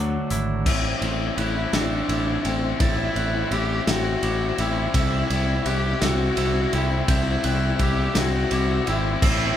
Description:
post-rock; 56 BPM (dotted quarters); 6/8; straight; A dorian; A4 = 442 Hz
warm cello; melody; 0.0-9.6 s; A3 to G4; -28 LUFS; equal
glockenspiel with brass mallets; arpeggios; 0.0-9.6 s; D6 to A6; -33 LUFS; right 2 dB
twangy electric guitar; arpeggios; 0.0-9.6 s; A2 to E4; -33 LUFS; left 3 dB
crunchy overdriven guitar; riff; 0.0-0.7, 9.2-9.6 s; D3 to F#4; -28 LUFS; right 5 dB
modern bright picked electric bass; bass; 0.0-9.5 s; G#1 to D2; -25 LUFS; equal
loose indie drum kit; drums; 0.3-9.4 s; crash cymbal, hi-hat, kick drum, ride cymbal, snare drum; -26 LUFS; equal
overdriven semi-hollow guitar; riff; 0.7-9.6 s; C4 to E4; -28 LUFS; left 7 dB
moderate large studio reverb, RT60 1.2 s; band playing live in one room; -20 LUFS; side -10 dB against mid
0.7-9.6 A section
build-up 0.7-9.6
0.0 Dadd9; 0.7 Am; 4.9 C

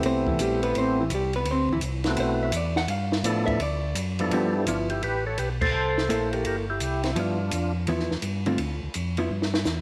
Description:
soul jazz organ trio; 168 BPM; 4/4; swing 65% on 8ths; G mixolydian; A4 = 440 Hz
percussive tonewheel organ; melody; 0.0-7.7 s; G2 to C#5; -30 LUFS; equal; slow rotary speaker
mellow tonewheel organ; bass; 0.0-9.8 s; G1 to A2; -32 LUFS; equal; overdrive, chorus vibrato, slow rotary speaker
compact cocktail drum kit; drums; 0.0-9.8 s; crash cymbal, hi-hat, kick drum, ride cymbal, snare drum; -34 LUFS; equal
vintage hollow-body jazz guitar; accompaniment; 0.1-9.3 s; D3 to F#5; -30 LUFS; equal
moderate echo chamber reverb, RT60 1.6 s, studio reverb; -26 LUFS; mono
0.0-4.3 A section; 4.3-9.8 B section
hollow-body jazz guitar solo 0.0-4.3; band accent 5.6; drum fill 9.3-9.7
0.0 Am7; 1.5 D13; 2.9 G13; 3.6 D69; 4.3 G13; 5.7 C6; 7.2 G13; 8.6 Dm; 9.3 Em

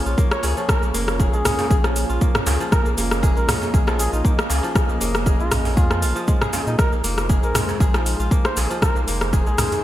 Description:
afro house; 118 BPM; 4/4; swing 54% on 16ths; Bb minor; A4 = 440 Hz
warm analog pad; sustained chords; 0.0-9.8 s; Ab3 to Eb5; -30 LUFS; right 1 dB; chorus, sidechain pumping
kora; arpeggios; 0.0-9.8 s; F3 to Ab4; -28 LUFS; left 1 dB; sidechain pumping, digital delay
warm sub bass; bass; 0.1-9.6 s; F1 to Bb2; -23 LUFS; equal; sidechain pumping
deep house drum kit; drums; 0.1-9.8 s; cabasa, hi-hat, rim click, toms; -23 LUFS; equal; overdrive, gated reverb
electronic kick drum; drums; 0.2-9.4 s; -18 LUFS; equal; overdrive
trumpet with bucket mute; melody; 0.3-9.8 s; Eb4 to Db5; -29 LUFS; equal; digital delay
djembe; percussion; 0.4-9.8 s; -31 LUFS; right 1 dB
light reverb, digital ambience; bright 1980s-style digital production; -17 LUFS; side -13 dB against mid
0.0-9.8 A section
0.0 Bbm; 6.8 Fm7

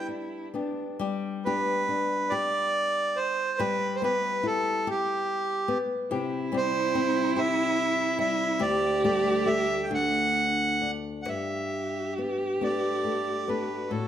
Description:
celtic folk, Celtic slow air; 42-48 BPM (dotted quarters); 6/8; rubato; G major; A4 = 441 Hz
accordion; melody; 0.0-14.1 s; G4 to G5; -27 LUFS; right 2 dB
warm cello; second line; 0.0-1.0, 6.1-14.1 s; D4 to G4; -30 LUFS; right 3 dB
flamenco guitar; accompaniment; 0.0-14.1 s; D2 to G4; -31 LUFS; left 5 dB
moderate recital hall reverb, RT60 1.7 s; -25 LUFS; side -10 dB against mid
0.0-1.0 A section; 1.0-11.3 B section; 11.3-14.1 A section
0.0 G; 3.6 Em/G; 6.1 C; 8.6 Dsus4; 9.9 N.C.; 11.3 Gadd9

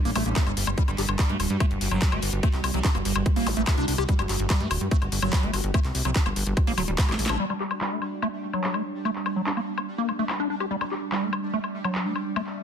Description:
psychedelic trance; 145 BPM; 4/4; straight; A4 = 440 Hz
pulsing gated texture; sustained chords; 0.0-12.6 s; G3 to F#4; -32 LUFS; right 2 dB; chorus, built-in reverb, sidechain pumping
liquid acid bass; riff; 0.1-12.4 s; F#3 to G4; -30 LUFS; moving between left 4 dB and right 5 dB; phaser, auto-pan, sidechain pumping, tape echo
plucky analog bass; bass; 0.1-7.4 s; D1 to G2; -27 LUFS; equal; tube saturation
drum and bass drum kit; drums; 0.1-12.5 s; handclaps, hi-hat, snare drum, woodblock; -30 LUFS; left 2 dB; overdrive, low-pass filter on hats, low-pass filter on perc, low-pass filter on snare
zap; sound effects; 0.2-0.3, 3.5-3.6 s; -36 LUFS; equal
electronic kick drum; drums; 0.4-7.1 s; -22 LUFS; equal; overdrive
light reverb, digital ambience; dense, heavily limited modern master; -23 LUFS; side -8 dB against mid
0.0-7.4 A section; 7.4-12.6 B section
drum fill 7.0-7.4; band accent 7.3
0.0 G5

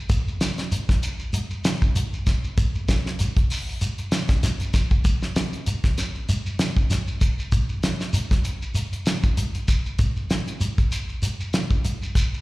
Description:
afrobeat; 97 BPM; 4/4; swing 55% on 16ths
damped 70s drum kit; drums; 0.1-12.3 s; hi-hat, kick drum, snare drum; -22 LUFS; equal
shekere; percussion; 0.1-12.4 s; -27 LUFS; equal; slapback echo
moderate club reverb, RT60 0.8 s; live gig heard through the venue's PA, recital hall reverb; -21 LUFS; side -20 dB against mid
0.0-12.4 A section

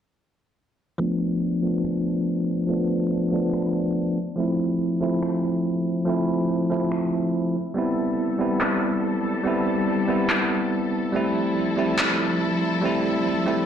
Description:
future bass; 142 BPM; 4/4; half-time; A4 = 440 Hz
bell-like tine electric piano; accompaniment; 1.0-13.7 s; F3 to E4; -22 LUFS; equal; medium stereo tremolo, digital delay
electronic finger snaps and handclaps; drums; 1.8-12.1 s; -26 LUFS; equal
rich symphonic string section; sustained chords; 7.8-13.7 s; F3 to A4; -28 LUFS; left 4 dB
light reverb; played on a big sound system in a bare room, large studio reverb, low-pass filter; -21 LUFS; side -8 dB against mid
1.0-13.7 A section
filter sweep 1.0-13.7
1.0 F6; 4.2 Fmaj7; 7.6 Am7; 11.1 Fmaj7

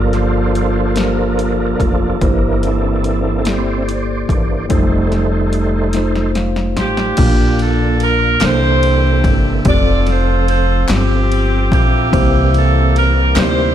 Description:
slow gospel; 48 BPM (dotted quarters); 6/8; straight; A4 = 442 Hz
mellow tine electric piano; accompaniment; 0.0-13.7 s; G2 to C6; -19 LUFS; left 1 dB; medium stereo tremolo
overdriven tonewheel organ; sustained chords; 0.0-13.7 s; E3 to D5; -20 LUFS; right 2 dB; chorus vibrato, fast rotary speaker
upright bass; bass; 0.0-13.7 s; F1 to D2; -17 LUFS; equal
punchy analog drum machine; drums; 0.1-13.6 s; crash cymbal, hi-hat, kick drum, ride cymbal, snare drum; -19 LUFS; equal
bright saxophone section; melody; 6.8-13.7 s; Bb3 to D5; -17 LUFS; right 3 dB
group handclap; percussion; 8.4-13.7 s; -28 LUFS; left 4 dB
light reverb; -12 LUFS; side -10 dB against mid
0.0-7.2 A section; 7.2-13.7 B section
tonewheel organ solo 0.0-7.2; drum fill 5.9-7.2; tine electric piano fill 5.9-7.2
0.0 Gm7; 2.2 C7/G; 4.7 F7; 7.2 Bb; 8.4 C13; 9.7 F; 12.1 C7

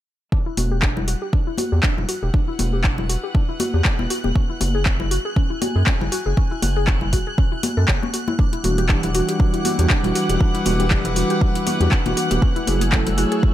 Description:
deep house; 119 BPM; 4/4; swing 55% on 16ths; E dorian; A4 = 440 Hz
mallet-like synth pluck; arpeggios; 0.3-13.5 s; C#4 to C#5; -28 LUFS; left 2 dB; wide subtle chorus, sidechain pumping, digital delay
electronic kick drum; drums; 0.3-13.5 s; -19 LUFS; equal; overdrive
rich chamber string section; texture; 0.3-13.5 s; E4 to G#5; -34 LUFS; left 2 dB; sidechain pumping
string machine, violins; texture; 0.3-13.5 s; F#6; -33 LUFS; right 1 dB; ensemble chorus, sidechain pumping
round analog bass; bass; 0.6-13.2 s; E1 to F#2; -21 LUFS; equal; sidechain pumping
deep house drum kit; drums; 0.6-13.4 s; handclaps, hi-hat; -25 LUFS; left 1 dB; overdrive
congas; percussion; 0.6-13.2 s; -28 LUFS; left 3 dB
airy breathy pad; sustained chords; 8.6-13.5 s; G3 to E6; -28 LUFS; equal; chorus, sidechain pumping
mellow tine electric piano; stabs; 8.6-13.5 s; E3 to A4; -23 LUFS; right 1 dB; medium stereo tremolo, sidechain pumping, dub echo
digital ambience; -17 LUFS; side -12 dB against mid
0.3-13.5 A section
fade-in on string section 0.3-13.5; filter sweep on synth arpeggio sound 0.3-13.5
0.3 E7sus2; 4.4 F#7sus2; 8.4 Em9; 12.4 F#m9

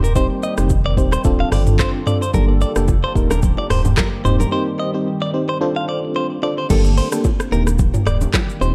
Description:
afrobeats; 110 BPM; 4/4; swing 55% on 16ths; G minor; A4 = 440 Hz
FM electric piano with tremolo; accompaniment; 0.0-8.7 s; Bb3 to C5; -24 LUFS; equal
deep dark ambient pad; sustained chords; 0.0-8.7 s; D3 to A4; -29 LUFS; equal; chorus, built-in reverb
direct-recorded clean electric guitar; riff; 0.0-8.7 s; A4 to F5; -27 LUFS; equal; spring reverb, delay
sub bass with octave; bass; 0.0-8.7 s; D1 to G1; -20 LUFS; equal
afro-pop drum kit; drums; 0.0-8.7 s; crash cymbal, handclaps, hi-hat, kick drum, rim click, shaker, toms; -21 LUFS; equal; overdrive
congas and bongos; percussion; 2.3-8.7 s; -29 LUFS; equal
little or no reverb; -18 LUFS; mono
0.0-6.7 A section; 6.7-8.7 B section
break 4.5-6.7
0.0 Cm/Eb; 1.2 Dm7; 2.3 Gmadd9; 3.2 Eb; 4.2 Cm/Eb; 5.6 Dm7; 6.7 Gmadd9; 7.5 Eb

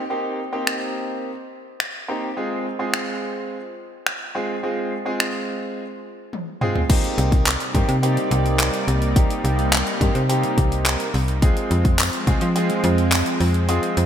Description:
dance-pop; 106 BPM; 4/4; straight; C minor; A4 = 440 Hz
clear grand piano; accompaniment; 0.1-14.1 s; Ab3 to Ab4; -25 LUFS; right 1 dB; wide subtle chorus
pop drum kit; drums; 0.7-14.1 s; crash cymbal, finger snaps, handclaps, hi-hat, kick drum, toms; -22 LUFS; equal; gated reverb
soft supersaw; sustained chords; 6.9-14.1 s; C3 to D5; -27 LUFS; right 1 dB; analog chorus, sidechain pumping
slap-like FM bass; bass; 7.2-14.1 s; C2 to F3; -20 LUFS; equal; sidechain pumping
tambourine; percussion; 12.0-13.3 s; -33 LUFS; left 8 dB
moderate lush hall reverb, RT60 2.7 s; bright 1980s-style digital production; -19 LUFS; side -9 dB against mid
0.0-6.9 A section; 6.9-14.1 B section
drum fill 6.3-6.9; kick muted 13.7-14.1
0.0 Cm7; 2.4 Fm; 6.9 Cm7; 11.4 Fm

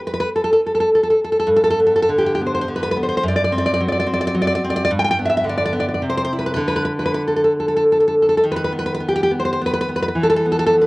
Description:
romantic piece for solo classical guitar; 98-110 BPM; 3/4; rubato; G major; A4 = 442 Hz
nylon-string guitar; solo; 0.1-10.9 s; F#2 to G5; -16 LUFS; equal
moderate spring reverb, RT60 2.6 s; worn, warbling old tape, cassette tape, warbly pitch drift; -16 LUFS; side -22 dB against mid
0.0-1.5 A section; 1.5-10.9 B section
0.0 N.C.; 1.5 G; 3.2 D7/F#; 4.9 G; 6.0 C; 6.6 N.C.; 8.4 B/D#; 10.2 E5

